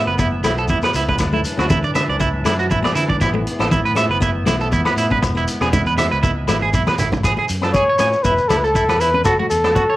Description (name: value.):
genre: highlife guitar band.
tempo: 119 BPM.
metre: 4/4.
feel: swing 54% on 16ths.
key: A major.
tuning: A4 = 439 Hz.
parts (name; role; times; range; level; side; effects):
fingerpicked steel-string acoustic guitar; accompaniment; 0.0-9.8 s; A3 to C#4; -27 LUFS; left 4 dB; cassette tape.
clear woodwind section; sustained chords; 0.0-7.2 s; E3 to D4; -27 LUFS; left 2 dB; cassette tape.
fingered electric bass; bass; 0.0-9.7 s; E1 to D3; -23 LUFS; equal; none.
electric guitar at the edge of break-up; arpeggios; 0.1-10.0 s; E4 to G#5; -20 LUFS; right 4 dB; cassette tape, tape echo.
vintage drum kit; drums; 0.2-9.9 s; hi-hat, kick drum, rim click; -23 LUFS; equal; cassette tape.
congas; percussion; 0.2-9.9 s; none; -24 LUFS; equal; none.
shekere; percussion; 0.2-9.9 s; none; -26 LUFS; left 1 dB; none.
agogo bells; percussion; 0.4-9.8 s; none; -29 LUFS; left 8 dB; none.
dark trumpet; melody; 7.7-10.0 s; A4 to C#5; -16 LUFS; left 1 dB; none.
room: light reverb.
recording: home recording on cassette.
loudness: -15 LUFS.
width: side -16 dB against mid.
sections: 0.0-7.2 A section; 7.2-10.0 B section.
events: drum fill 6.6-7.2.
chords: 0.0 Asus2; 1.2 Dadd9; 3.2 Asus2; 5.2 E; 7.2 Amaj7; 8.2 Esus4; 9.3 F#m.